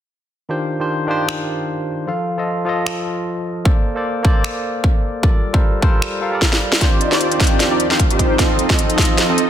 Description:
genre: future bass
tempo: 152 BPM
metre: 4/4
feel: swing 56% on 16ths, half-time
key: unclear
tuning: A4 = 440 Hz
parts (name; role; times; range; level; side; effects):
- barky tine electric piano; accompaniment; 0.5-9.5 s; Eb3 to F5; -21 LUFS; equal; medium stereo tremolo, sidechain pumping, dub echo
- trap drum kit; drums; 1.3-9.5 s; finger snaps, hi-hat, snare drum; -19 LUFS; equal; soft clipping on snare, high-pass filter on snare, small room ambience, high-pass filter on hats
- electronic kick drum; drums; 3.7-9.1 s; none; -15 LUFS; equal; small room ambience
- shimmering ambient pad; sustained chords; 7.4-9.5 s; Eb2 to Eb5; -27 LUFS; equal; chorus, built-in reverb, sidechain pumping
- big bright polysynth; riff; 6.8-9.5 s; C4 to F5; -18 LUFS; right 2 dB; analog chorus, sidechain pumping, dub echo
room: light reverb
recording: dense, heavily limited modern master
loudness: -15 LUFS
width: side -10 dB against mid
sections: 0.5-6.8 A section; 6.8-9.5 B section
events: drum fill 6.4-6.8, 6.8-9.5; build-up 6.8-9.5; filter sweep on ambient pad 6.8-9.5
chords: 0.5 Ebmaj13; 2.1 F7; 3.7 Bbmaj9; 5.2 Gm11; 6.8 Ebmaj13; 8.4 F7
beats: | 0.50 0.89 1.29 1.68 | 2.08 2.47 2.87 3.26 | 3.65 4.05 4.44 4.84 | 5.23 5.63 6.02 6.42 | 6.81 7.21 7.60 8.00 | 8.39 8.79 9.18

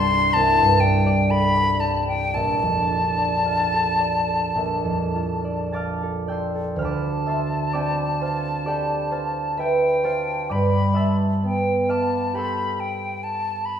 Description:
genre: classical, impressionist duo for flute and harp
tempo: 48-70 BPM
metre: 4/4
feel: rubato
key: D dorian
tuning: A4 = 440 Hz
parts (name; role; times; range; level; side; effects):
- bright concert flute; melody; 0.0-13.8 s; G5 to C6; -22 LUFS; left 2 dB; none
- concert harp; accompaniment; 0.0-13.8 s; Bb1 to A6; -22 LUFS; right 1 dB; none
room: wet recital hall reverb, RT60 1.5 s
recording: heard from further back in the room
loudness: -19 LUFS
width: side -8 dB against mid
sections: 0.0-6.8 A section; 6.8-13.8 B section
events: none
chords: 0.0 Csus2; 2.3 Bbmaj7; 6.8 Dm11; 10.5 G69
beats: 0.35 1.30 | 2.34 3.45 4.55 5.74 | 6.80 7.75 8.66 9.59 | 10.51 11.44 12.35 13.23

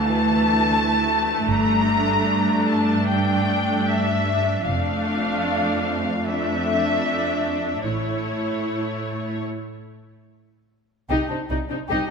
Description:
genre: cinematic, suspense film score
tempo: 75 BPM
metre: 4/4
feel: straight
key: D harmonic minor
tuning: A4 = 440 Hz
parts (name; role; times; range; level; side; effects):
- muted symphonic violin section; melody; 0.0-12.1 s; C5 to Bb5; -24 LUFS; left 3 dB; none
- muted symphonic viola section; accompaniment; 0.0-12.1 s; E3 to E4; -23 LUFS; equal; none
- muted symphonic cello section; bass; 0.0-12.0 s; D2 to C3; -26 LUFS; right 3 dB; none
- muted symphonic double bass section; bass; 1.5-12.0 s; F1 to C2; -29 LUFS; right 3 dB; none
- muted symphonic violin section; second line; 11.1-12.1 s; D4 to G4; -28 LUFS; left 4 dB; none
room: wet scoring stage reverb, RT60 1.8 s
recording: none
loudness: -19 LUFS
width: side -5 dB against mid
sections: 0.0-11.1 A section; 11.1-12.1 B section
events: break 9.5-11.1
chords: 0.0 Dsus2; 1.5 Gmadd9; 4.7 Dmadd9/F; 7.8 A; 9.5 N.C.; 11.1 Cmadd9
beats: 0.72 | 1.50 2.30 3.09 3.88 | 4.67 5.46 6.26 7.05 | 7.85 8.65 9.47 10.29 | 11.10 11.90

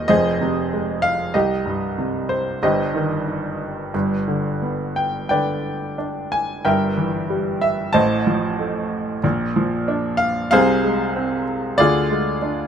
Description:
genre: classical, lyrical solo piano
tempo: 86-98 BPM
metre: 4/4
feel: rubato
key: C minor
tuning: A4 = 440 Hz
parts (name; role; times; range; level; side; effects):
- clear baby grand piano; solo; 0.0-12.7 s; Eb1 to A5; -18 LUFS; equal; none
room: little or no reverb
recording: close, detailed microphones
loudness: -18 LUFS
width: side -8 dB against mid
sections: 0.0-12.7 A section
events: none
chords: 0.1 Fm7; 1.3 Cm; 2.6 Cm/G; 3.9 G; 6.7 Gm6; 8.0 F7/A; 9.2 Bb; 10.5 Fm/C; 11.8 Ddim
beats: | 0.10 0.72 1.34 1.97 | 2.62 3.28 3.94 4.63 | 5.31 5.99 6.66 7.30 | 7.95 8.60 9.24 9.88 | 10.53 11.16 11.79 12.42

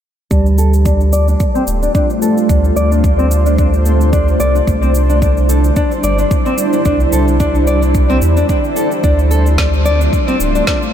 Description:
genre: organic downtempo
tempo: 110 BPM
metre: 4/4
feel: swing 56% on 16ths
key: D minor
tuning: A4 = 440 Hz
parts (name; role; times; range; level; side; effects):
- granular cloud pad; sustained chords; 1.3-10.9 s; G3 to C5; -17 LUFS; right 1 dB; built-in reverb, sidechain pumping
- nylon-string guitar; arpeggios; 0.3-10.8 s; C4 to D5; -18 LUFS; left 2 dB; low-pass filter, ping-pong delay
- warm sub bass; bass; 0.3-10.6 s; D1 to E2; -13 LUFS; equal; sidechain pumping
- electronic cabasa and snare drum; drums; 0.3-10.9 s; none; -24 LUFS; right 1 dB; none
- electronic kick drum; drums; 0.3-10.8 s; none; -16 LUFS; equal; none
- bronze singing bowl; texture; 0.3-10.9 s; G3 to G4; -26 LUFS; right 4 dB; none
room: moderate huge ambient reverb, RT60 8.0 s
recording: dreamy mix soaked in reverb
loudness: -11 LUFS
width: side -10 dB against mid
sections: 0.3-10.9 A section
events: filter sweep on sub bass 0.3-10.9; filter sweep on nylon-string guitar 0.3-10.9; filter sweep on ambient pad 0.3-10.9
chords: 0.3 Dm7; 4.7 Cadd9; 9.0 Dm7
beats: | 0.31 0.86 1.40 1.95 | 2.49 3.04 3.58 4.13 | 4.67 5.22 5.76 6.31 | 6.86 7.40 7.95 8.49 | 9.04 9.58 10.13 10.67

